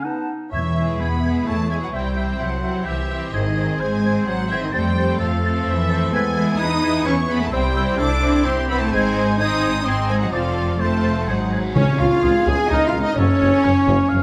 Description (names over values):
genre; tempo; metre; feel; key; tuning
cinematic, heroic adventure film score; 128 BPM; 3/4; straight; unclear; A4 = 440 Hz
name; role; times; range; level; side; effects
bright large flute ensemble; second line; 0.0-14.2 s; Db5 to A6; -32 LUFS; equal; none
warm clarinet; second line; 0.0-11.6 s; Eb4 to E5; -33 LUFS; equal; none
warm oboe; second line; 0.0-14.2 s; G4 to Gb5; -29 LUFS; equal; none
warm French horn section; sustained chords; 0.0-14.2 s; D#3 to Ab4; -26 LUFS; equal; none
clear symphonic violin section; melody; 0.5-14.2 s; Db5 to D#6; -33 LUFS; equal; none
rich symphonic cello section; bass; 0.5-14.2 s; Db2 to D#4; -27 LUFS; equal; none
rich symphonic double bass section; bass; 0.5-14.2 s; F1 to F2; -26 LUFS; equal; none
timpani; percussion; 0.5-1.2, 11.8-12.4 s; E2 to Db3; -28 LUFS; equal; none
clear symphonic violin section; second line; 0.8-14.2 s; E4 to Ab5; -34 LUFS; equal; none
rich studio viola section; accompaniment; 0.8-14.2 s; G#3 to Ab4; -30 LUFS; equal; none
cymbal swell and tam-tam; percussion; 8.9-13.6 s; none; -33 LUFS; equal; none
clear trumpet; stabs; 11.7-14.2 s; Db4 to Ab4; -28 LUFS; equal; none
warm tuba; bass; 11.8-14.2 s; Gb1 to Db2; -30 LUFS; equal; none
room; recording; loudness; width
moderate scoring stage reverb, RT60 1.6 s; none; -20 LUFS; mono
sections
0.5-11.8 A section; 11.8-14.2 B section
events
band accent 11.8-12.2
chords
0.1 Cb7; 0.5 E; 1.9 C; 3.3 G#; 4.7 F; 6.1 E; 7.5 C; 8.9 G#; 10.3 F; 11.3 G#7; 11.8 Db; 13.2 Gbm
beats
0.06 | 0.53 1.00 1.47 | 1.94 2.40 2.87 | 3.34 3.81 4.27 | 4.74 5.21 5.67 | 6.14 6.60 7.07 | 7.53 8.00 8.46 | 8.93 9.39 9.86 | 10.33 10.80 11.28 | 11.76 12.23 12.70 | 13.17 13.63 14.10